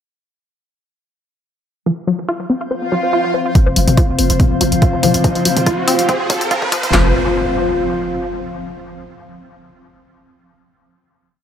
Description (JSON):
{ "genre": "driving peak-time techno", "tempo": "142 BPM", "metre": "4/4", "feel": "straight", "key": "unclear", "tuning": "A4 = 440 Hz", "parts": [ { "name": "tight sequenced synth", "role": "riff", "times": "1.9-7.1 s", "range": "F3 to F4", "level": "-20 LUFS", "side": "left 2 dB", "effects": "chorus, tube saturation, sidechain pumping, dub echo" }, { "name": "swarming drone", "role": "drone", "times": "2.8-7.0 s", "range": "F3 to C4", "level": "-23 LUFS", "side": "left 2 dB", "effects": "built-in reverb, sidechain pumping" }, { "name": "warbly tape-like pad", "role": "texture", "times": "2.8-8.6 s", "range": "F4 to F5", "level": "-21 LUFS", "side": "left 1 dB", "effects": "chorus, built-in reverb, sidechain pumping" }, { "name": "swell, riser and impact", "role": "sound effects", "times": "2.8-8.6 s", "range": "none", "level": "-22 LUFS", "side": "right 1 dB", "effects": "none" }, { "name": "punchy analog drum machine", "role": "drums", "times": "3.6-7.0 s", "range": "handclaps, kick drum, snare drum", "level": "-15 LUFS", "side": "equal", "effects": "none" }, { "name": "punchy analog drum machine", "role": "drums", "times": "3.6-6.9 s", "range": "hi-hat, toms", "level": "-19 LUFS", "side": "left 1 dB", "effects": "sidechain pumping on hats, sidechain pumping on toms" }, { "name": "growling 808-style bass", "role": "bass", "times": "3.7-7.1 s", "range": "F1", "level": "-19 LUFS", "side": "equal", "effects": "tube saturation, sidechain pumping, low-pass filter" } ], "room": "moderate echo chamber reverb, RT60 2.1 s", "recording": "echo-heavy mix, high-pass filter", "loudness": "-13 LUFS", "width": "side -9 dB against mid", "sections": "1.9-3.6 intro; 3.6-6.9 build; 6.9-8.6 final chord", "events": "filter sweep on synth arpeggio sound 1.9-3.6, 3.6-6.9; swell 2.8-3.6; build-up 3.6-6.9; riser 3.6-6.9; filter sweep 3.6-6.9; drum fill 5.2-6.9", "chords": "1.9 F5", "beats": "| 1.86 2.29 2.71 3.13 | 3.55 3.98 4.40 4.82 | 5.24 5.67 6.09 6.51 | 6.93 7.36 7.78 8.20" }